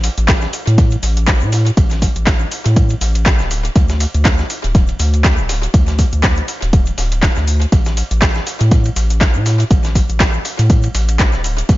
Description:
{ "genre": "deep house", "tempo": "121 BPM", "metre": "4/4", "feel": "swing 56% on 16ths", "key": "unclear", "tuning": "A4 = 443 Hz", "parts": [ { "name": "round analog bass", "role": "bass", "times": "0.0-11.8 s", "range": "D1 to A2", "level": "-15 LUFS", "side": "equal", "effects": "sidechain pumping" }, { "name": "deep house drum kit", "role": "drums", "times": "0.0-11.8 s", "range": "handclaps, hi-hat, shaker", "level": "-20 LUFS", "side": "equal", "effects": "overdrive" }, { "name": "dusty soul sampler-style drum kit", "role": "drums", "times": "0.0-11.8 s", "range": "ride cymbal, snare drum", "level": "-27 LUFS", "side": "right 1 dB", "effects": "high-pass filter on snare, sidechain pumping on cymbals, high-pass filter on cymbals, high-pass filter on room, tape echo" }, { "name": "electronic kick drum", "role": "drums", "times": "0.3-11.8 s", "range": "none", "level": "-13 LUFS", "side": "equal", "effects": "overdrive" } ], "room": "little or no reverb", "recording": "echo-heavy mix, nothing above 7.5 kHz", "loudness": "-12 LUFS", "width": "side -17 dB against mid", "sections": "0.0-11.8 A section", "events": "none", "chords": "none" }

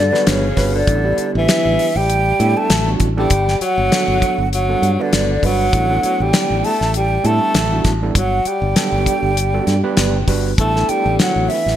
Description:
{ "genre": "electric jazz fusion", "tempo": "99 BPM", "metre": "4/4", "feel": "swing 56% on 16ths", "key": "G major", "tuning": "A4 = 438 Hz", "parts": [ { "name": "mellow hollow concert flute", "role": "melody", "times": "0.0-11.8 s", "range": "C#5 to A5", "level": "-20 LUFS", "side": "right 2 dB", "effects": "none" }, { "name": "breathy tenor saxophone", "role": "second line", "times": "0.0-11.8 s", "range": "C#3 to A3", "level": "-22 LUFS", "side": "left 4 dB", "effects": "none" }, { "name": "overdriven tine electric piano", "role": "accompaniment", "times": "0.0-11.6 s", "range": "F#3 to B4", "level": "-23 LUFS", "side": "right 5 dB", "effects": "lush chorus" }, { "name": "modern bright fingered electric bass", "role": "bass", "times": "0.0-11.8 s", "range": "G1 to A2", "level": "-19 LUFS", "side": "equal", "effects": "none" }, { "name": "damped 70s drum kit", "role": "drums", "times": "0.1-11.7 s", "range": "hi-hat, kick drum, snare drum", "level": "-19 LUFS", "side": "left 1 dB", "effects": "gated reverb" } ], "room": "moderate plate reverb, RT60 1.4 s, studio reverb", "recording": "bright 1980s-style digital production", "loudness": "-14 LUFS", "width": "side -11 dB against mid", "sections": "0.0-11.8 A section", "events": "none", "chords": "0.0 Gmaj7; 0.9 A9sus4; 3.3 Gmaj9; 5.7 A9sus4; 8.2 Gmaj9; 10.6 A9sus4" }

